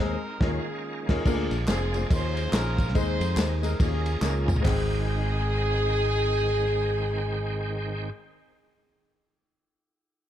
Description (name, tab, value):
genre	uptempo gospel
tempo	141 BPM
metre	4/4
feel	swing 61% on 8ths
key	Ab major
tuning	A4 = 440 Hz
part	warm horn section	melody	0.0-8.1 s	C4 to C5	-30 LUFS	equal	slapback echo
part	clear grand piano	accompaniment	0.0-8.1 s	Ab1 to G5	-33 LUFS	left 4 dB	none
part	bright tonewheel organ	sustained chords	0.0-8.1 s	Eb3 to G5	-36 LUFS	right 4 dB	slow rotary speaker, chorus vibrato
part	fingered electric bass	bass	0.0-8.1 s	F1 to F2	-28 LUFS	equal	none
part	warm soul drum kit	drums	0.4-4.8 s	crash cymbal, hi-hat, kick drum, ride cymbal, snare drum, toms	-27 LUFS	equal	none
part	tambourine and handclaps	percussion	1.3-4.9 s	none	-39 LUFS	left 1 dB	none
room	light reverb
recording	dark, warm production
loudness	-24 LUFS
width	side -11 dB against mid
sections	0.0-1.3 A section; 1.3-4.7 B section; 4.7-8.0 C section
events	band accent 0.0-1.3; drum fill 4.2-4.7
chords	0.4 Eb9sus4; 1.3 Bb7; 2.1 Eb9sus4; 3.0 Ab/Eb; 3.8 Eb9sus4; 4.7 Abmaj7